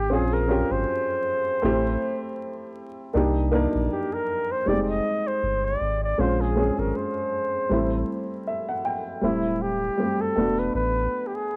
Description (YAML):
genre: lo-fi hip hop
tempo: 79 BPM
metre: 4/4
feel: swing 56% on 16ths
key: D minor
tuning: A4 = 444 Hz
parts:
  - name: breathy flugelhorn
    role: melody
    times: 0.0-11.6 s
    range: E4 to Eb5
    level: -29 LUFS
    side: equal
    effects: low-pass filter, cassette tape, plate reverb
  - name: dark upright piano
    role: accompaniment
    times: 0.0-11.6 s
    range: G3 to G5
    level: -28 LUFS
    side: equal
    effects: low-pass filter, cassette tape, plate reverb
  - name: soft dub sub bass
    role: bass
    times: 0.0-11.1 s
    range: D1 to C2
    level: -30 LUFS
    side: equal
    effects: none
room: light reverb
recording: home recording on cassette, vinyl crackle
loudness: -25 LUFS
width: mono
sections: 0.0-9.2 A section; 9.2-11.6 B section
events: upright piano fill 8.1-9.2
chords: 0.1 Bbm9; 1.6 Am7; 3.1 Cm9; 4.7 Fm9; 6.2 Bbm9; 7.7 Am7; 9.2 D9sus4; 10.4 E9sus4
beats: | 0.10 0.86 1.62 2.38 | 3.14 3.90 4.66 5.42 | 6.18 6.94 7.70 8.46 | 9.22 9.98 10.74 11.50